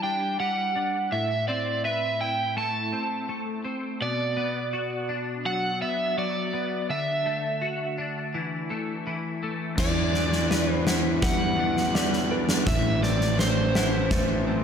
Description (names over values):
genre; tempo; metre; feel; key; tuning
post-rock; 83 BPM; 4/4; straight; E minor; A4 = 440 Hz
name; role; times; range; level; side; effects
overdriven electric guitar; melody; 0.0-14.4 s; C5 to A5; -28 LUFS; right 2 dB; slapback echo, tape echo
twelve-string electric guitar; arpeggios; 0.0-14.6 s; A2 to B4; -30 LUFS; left 2 dB; ensemble chorus, slapback echo, tape echo
felt-muted upright piano; arpeggios; 9.8-14.6 s; B4 to F#5; -37 LUFS; right 6 dB; slapback echo, tape echo
fuzz fingered electric bass; bass; 9.8-14.6 s; A1 to E2; -27 LUFS; equal; overdrive
huge arena drum kit; drums; 9.8-14.3 s; crash cymbal, kick drum, snare drum; -25 LUFS; equal; none
room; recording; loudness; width
moderate concert hall reverb, RT60 2.2 s; big arena sound; -24 LUFS; side -7 dB against mid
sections
0.0-9.8 A section; 9.8-14.6 A section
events
none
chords
0.0 Em7; 1.1 Amadd9; 4.0 Bm; 6.9 Dadd9; 9.8 Em7; 12.7 Am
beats
0.39 | 1.12 1.84 2.56 3.29 | 4.01 4.73 5.45 6.18 | 6.90 7.62 8.34 9.06 | 9.79 10.51 11.23 11.95 | 12.67 13.39 14.11